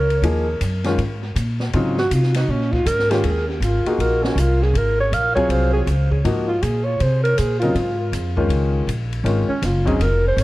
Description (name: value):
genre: modal jazz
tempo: 160 BPM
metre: 4/4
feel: swing 64% on 8ths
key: Eb dorian from 3.2 s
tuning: A4 = 441 Hz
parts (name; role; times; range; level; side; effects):
- breathy alto saxophone; second line; 0.0-10.4 s; Db4 to F5; -21 LUFS; right 1 dB; tape echo
- upright bass; bass; 0.0-10.4 s; F1 to C3; -20 LUFS; equal; none
- open jazz drum kit; drums; 0.1-10.4 s; hi-hat, kick drum, ride cymbal, snare drum; -30 LUFS; left 1 dB; tape echo
- warm baby grand piano; accompaniment; 0.2-10.0 s; Db3 to Ab4; -23 LUFS; left 2 dB; none
room: moderate spring reverb, RT60 1.9 s, small room ambience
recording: echo-heavy mix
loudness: -17 LUFS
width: side -18 dB against mid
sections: 0.0-3.2 A section; 3.2-10.4 A section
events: alto saxophone solo 0.0-10.4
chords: 0.0 Ab9sus4; 3.2 Eb13sus4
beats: | 0.23 0.61 0.98 1.36 | 1.74 2.11 2.49 2.86 | 3.24 3.62 3.99 4.37 | 4.74 5.12 5.50 5.87 | 6.25 6.62 7.00 7.38 | 7.75 8.13 8.50 8.88 | 9.26 9.63 10.01 10.38